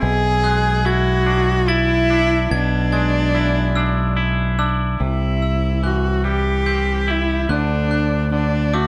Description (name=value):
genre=post-rock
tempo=48 BPM (dotted quarters)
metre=6/8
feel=straight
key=unclear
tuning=A4 = 444 Hz
part: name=dark cello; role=melody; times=0.0-8.9 s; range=D4 to G#4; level=-23 LUFS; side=equal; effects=slapback echo
part: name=glockenspiel with brass mallets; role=arpeggios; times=0.0-8.9 s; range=D6 to A6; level=-32 LUFS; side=equal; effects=slapback echo
part: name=twangy electric guitar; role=arpeggios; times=0.0-8.9 s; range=B2 to E4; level=-27 LUFS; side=equal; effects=slapback echo
part: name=growling fingered electric bass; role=bass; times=0.0-8.9 s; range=B1 to D2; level=-22 LUFS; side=equal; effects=overdrive
room=moderate large studio reverb, RT60 1.1 s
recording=none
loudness=-18 LUFS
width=mono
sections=0.0-5.0 A section; 5.0-8.9 B section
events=none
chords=0.0 E7/B; 5.0 C; 7.5 D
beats=| 0.04 1.28 | 2.52 3.77 | 5.01 6.25 | 7.50 8.74